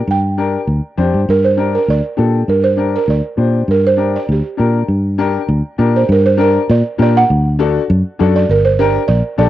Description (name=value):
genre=latin, cumbia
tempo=200 BPM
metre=4/4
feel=straight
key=G minor, G harmonic minor from 6.1 s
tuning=A4 = 441 Hz
part: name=buzzing marimba with soft mallets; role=melody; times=0.0-9.5 s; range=G4 to G5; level=-15 LUFS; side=right 4 dB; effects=none
part: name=fingered electric bass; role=bass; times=0.1-9.5 s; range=G1 to Bb2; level=-14 LUFS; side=equal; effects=none
part: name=clear upright piano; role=accompaniment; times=0.4-9.5 s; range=D4 to C5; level=-18 LUFS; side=left 7 dB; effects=cassette tape
room=light reverb, small room reverb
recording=home recording on cassette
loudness=-12 LUFS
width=side -13 dB against mid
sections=0.0-6.1 A section; 6.1-9.5 B section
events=none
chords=0.0 Gm; 7.3 D; 8.5 Gm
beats=| 0.07 0.37 0.68 0.98 | 1.28 1.58 1.88 2.18 | 2.48 2.78 3.08 3.38 | 3.69 3.99 4.29 4.59 | 4.89 5.19 5.49 5.79 | 6.09 6.39 6.69 6.99 | 7.29 7.59 7.89 8.19 | 8.49 8.79 9.09 9.39